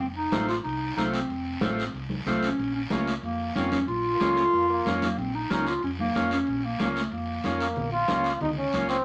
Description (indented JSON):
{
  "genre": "latin, cumbia",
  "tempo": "185 BPM",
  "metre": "4/4",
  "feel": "straight",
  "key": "Bb harmonic minor",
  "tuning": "A4 = 440 Hz",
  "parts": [
    { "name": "mellow clarinet", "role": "melody", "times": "0.0-7.6 s", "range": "A3 to F4", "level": "-30 LUFS", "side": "equal", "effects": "none" },
    { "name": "woody fretless electric bass", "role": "bass", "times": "0.0-9.0 s", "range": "F1 to F2", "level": "-38 LUFS", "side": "equal", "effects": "none" },
    { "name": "guiro", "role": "percussion", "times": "0.0-9.0 s", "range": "none", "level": "-40 LUFS", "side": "equal", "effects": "none" },
    { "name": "overdriven combo organ", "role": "accompaniment", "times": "0.3-9.0 s", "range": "A3 to F4", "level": "-31 LUFS", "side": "equal", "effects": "none" },
    { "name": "congas", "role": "percussion", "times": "0.3-8.9 s", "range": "none", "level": "-35 LUFS", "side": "equal", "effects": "none" },
    { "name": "warm trombone", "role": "second line", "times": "4.1-4.9, 7.6-9.0 s", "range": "A3 to F4", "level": "-30 LUFS", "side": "equal", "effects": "none" }
  ],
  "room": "wet studio ambience, RT60 0.5 s",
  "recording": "none",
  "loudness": "-27 LUFS",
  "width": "mono",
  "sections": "0.0-7.8 A section; 7.8-9.0 B section",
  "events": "trombone solo 7.8-9.0",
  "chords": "0.0 F7; 2.6 Bbm"
}